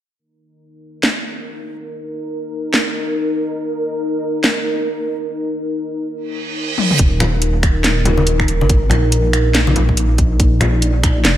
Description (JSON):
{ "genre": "deep dubstep", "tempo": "141 BPM", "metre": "4/4", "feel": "swing 61% on 16ths, half-time", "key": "unclear", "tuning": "A4 = 440 Hz", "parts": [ { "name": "dark analog pad", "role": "sustained chords", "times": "1.2-11.4 s", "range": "Eb4 to D5", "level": "-22 LUFS", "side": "equal", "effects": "chorus" }, { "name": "garage drum kit", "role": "drums", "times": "1.0-11.4 s", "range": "finger snaps, hi-hat, snare drum, toms", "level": "-19 LUFS", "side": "equal", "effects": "none" }, { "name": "reverse cymbal", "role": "sound effects", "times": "6.3-7.0 s", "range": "none", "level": "-23 LUFS", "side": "right 5 dB", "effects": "none" }, { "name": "dark detuned saw bass", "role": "bass", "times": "7.0-11.4 s", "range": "Eb1 to Bb1", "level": "-16 LUFS", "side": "equal", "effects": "none" }, { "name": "electronic kick drum", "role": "drums", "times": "7.0-11.1 s", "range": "none", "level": "-15 LUFS", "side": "equal", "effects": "none" }, { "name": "congas", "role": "percussion", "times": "7.2-10.7 s", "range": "none", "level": "-22 LUFS", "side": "left 2 dB", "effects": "dub echo" } ], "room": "moderate lush hall reverb, RT60 2.2 s", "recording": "dreamy mix soaked in reverb", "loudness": "-14 LUFS", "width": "side -12 dB against mid", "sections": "0.2-7.0 A section; 7.0-11.4 B section", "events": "reverse cymbal 6.3-7.0; drum fill 6.8", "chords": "0.2 Eb5" }